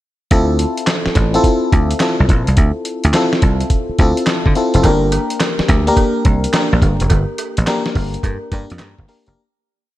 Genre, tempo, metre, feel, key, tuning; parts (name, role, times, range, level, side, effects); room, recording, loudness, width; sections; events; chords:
R&B, new jack swing; 106 BPM; 4/4; swing 65% on 16ths; D minor; A4 = 440 Hz
FM electric piano; accompaniment; 0.3-9.4 s; Bb3 to Bb4; -18 LUFS; left 2 dB; chorus
dry thumbed slap bass; bass; 0.3-9.3 s; F1 to D3; -16 LUFS; equal
dusty soul sampler-style drum kit; drums; 0.3-9.4 s; handclaps, hi-hat, kick drum, snare drum; -16 LUFS; equal; gated reverb
cowbell; percussion; 4.8-9.0 s; -30 LUFS; right 8 dB
digital ambience; -13 LUFS; side -15 dB against mid
0.3-9.4 verse
fade-out 7.1-9.4
0.3 Dm7; 4.8 Gm